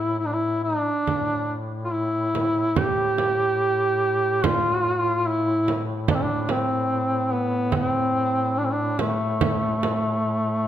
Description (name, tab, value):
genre	caucasian folk, Caucasian lament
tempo	72 BPM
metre	4/4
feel	rubato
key	A minor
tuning	A4 = 439 Hz
part	mellow duduk	melody	0.0-10.7 s	A3 to G4	-22 LUFS	equal	none
part	warm duduk	drone	0.0-10.7 s	A2	-30 LUFS	left 1 dB	none
part	frame drum	percussion	1.1-10.0 s	none	-27 LUFS	right 5 dB	none
room	moderate scoring stage reverb, RT60 1.6 s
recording	none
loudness	-21 LUFS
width	side -11 dB against mid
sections	0.0-10.7 A section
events	none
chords	none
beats	0.20 | 1.07 1.92 2.76 3.60 | 4.44 5.27 6.08 6.90 | 7.73 8.57 9.41 10.26